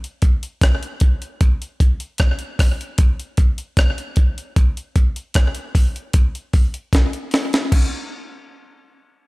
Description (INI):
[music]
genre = reggae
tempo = 76 BPM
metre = 4/4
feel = straight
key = none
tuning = none
[part]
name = breakbeat sampler-style drum kit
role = drums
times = 0.0-7.9 s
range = crash cymbal, hi-hat, kick drum, rim click, snare drum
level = -16 LUFS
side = equal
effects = none
[sound]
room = little or no reverb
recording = none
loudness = -16 LUFS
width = side -23 dB against mid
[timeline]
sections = 0.0-7.7 A section; 7.7-9.3 B section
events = drum fill 6.9-7.7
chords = none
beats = 0.62 | 1.41 2.19 2.98 3.77 | 4.56 5.35 6.14 6.93 | 7.72